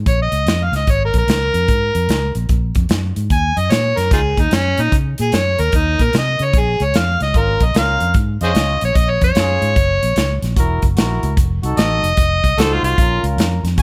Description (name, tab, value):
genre	electric blues shuffle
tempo	149 BPM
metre	4/4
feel	swing 65% on 8ths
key	Bb minor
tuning	A4 = 440 Hz
part	vintage muted fingered electric bass	bass	0.0-13.8 s	Fb1 to Db3	-21 LUFS	equal	none
part	overdriven harmonica	melody	0.1-13.8 s	Db4 to Ab5	-20 LUFS	equal	none
part	natural country drum kit	drums	0.1-13.8 s	hi-hat, kick drum, snare drum	-20 LUFS	equal	none
part	mellow horn section	stabs	7.3-13.8 s	Db4 to Db5	-27 LUFS	equal	none
room	little or no reverb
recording	none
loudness	-16 LUFS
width	mono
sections	0.0-13.8 A section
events	harmonica solo 0.0-13.8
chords	0.0 Bbm; 3.3 Ebm; 6.5 Bbm; 9.8 Gb7; 11.4 F7b9; 13.0 Bbm